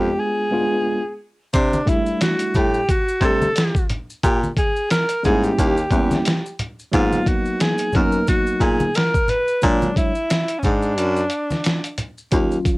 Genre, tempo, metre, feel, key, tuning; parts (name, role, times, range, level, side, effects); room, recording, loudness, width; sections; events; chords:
hip hop, jazz-hop; 89 BPM; 4/4; swing 57% on 16ths; A4 = 441 Hz
clear alto saxophone; melody; 0.0-12.0 s; C#4 to Cb5; -22 LUFS; equal; cassette tape
tine electric piano; accompaniment; 0.0-12.8 s; Gb3 to C#5; -22 LUFS; equal; overdrive, medium stereo tremolo, cassette tape
warm baritone saxophone; bass; 0.0-12.6 s; Eb2 to C3; -21 LUFS; equal
dusty soul sampler-style drum kit; drums; 1.5-12.8 s; hi-hat, kick drum, snare drum; -21 LUFS; equal; overdrive, cassette tape
maracas and congas; percussion; 1.5-12.8 s; -30 LUFS; equal
moderate studio reverb, RT60 0.6 s; home recording on cassette; -17 LUFS; side -22 dB against mid
0.0-12.3 A section
break 0.2-1.5, 11.0-12.3
0.0 G7b9 (rootless); 1.5 C69; 4.2 Bbm7; 5.6 Eb7b9; 6.9 Abm9; 9.6 Bb7alt